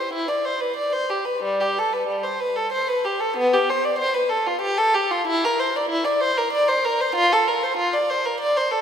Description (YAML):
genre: classical, baroque-style suite movement for unaccompanied violin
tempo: 95 BPM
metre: 3/4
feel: rubato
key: F major from 5.3 s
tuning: A4 = 442 Hz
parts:
  - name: rich violin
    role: solo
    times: 0.0-8.8 s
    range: G3 to D5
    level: -19 LUFS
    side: equal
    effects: none
room: wet church reverb, RT60 2.6 s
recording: none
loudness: -19 LUFS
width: side -8 dB against mid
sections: 0.0-8.8 A section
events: none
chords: none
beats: 0.13 0.77 | 1.43 2.07 2.70 | 3.35 3.98 4.61 | 5.25 5.88 6.51 | 7.13 7.76 8.39